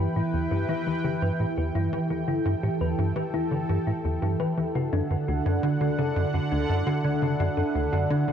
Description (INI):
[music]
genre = ambient, sequencer-driven space music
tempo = 85 BPM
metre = 4/4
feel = straight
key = E minor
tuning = A4 = 439 Hz
[part]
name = sweeping resonant pad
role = sustained chords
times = 0.0-8.3 s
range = D3 to G5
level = -27 LUFS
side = right 1 dB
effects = chorus
[part]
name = thumb-piano-like synth pluck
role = arpeggios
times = 0.0-8.2 s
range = D4 to B4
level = -33 LUFS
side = left 5 dB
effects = chorus, auto-pan, ping-pong delay
[part]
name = tight sequencer bass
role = riff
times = 0.0-8.3 s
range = D2 to E3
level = -27 LUFS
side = equal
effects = wide subtle chorus, ping-pong delay
[part]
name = bubbling stepped-filter texture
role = texture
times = 0.0-8.3 s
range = E4 to E5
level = -45 LUFS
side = right 4 dB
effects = none
[sound]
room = moderate spring reverb, RT60 2.3 s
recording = echo-heavy mix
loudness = -24 LUFS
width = side -8 dB against mid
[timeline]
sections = 0.0-8.3 A section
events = none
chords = 0.0 Em; 4.8 D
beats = 0.52 1.22 | 1.93 2.63 3.34 4.04 | 4.75 5.46 6.16 6.87 | 7.57 8.28